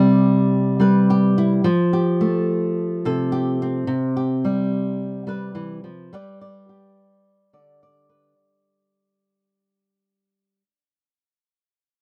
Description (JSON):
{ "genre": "highlife", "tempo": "107 BPM", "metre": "4/4", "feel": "straight", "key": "unclear", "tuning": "A4 = 440 Hz", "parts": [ { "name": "flamenco guitar", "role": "solo", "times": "0.0-10.6 s", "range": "C3 to D5", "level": "-20 LUFS", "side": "equal", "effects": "none" } ], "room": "light reverb", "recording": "none", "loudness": "-20 LUFS", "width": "mono", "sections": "0.0-8.4 A section", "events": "fade-out 0.0-8.4", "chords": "0.0 Cmaj7; 1.6 Fadd9; 3.9 Cmaj7; 6.1 G" }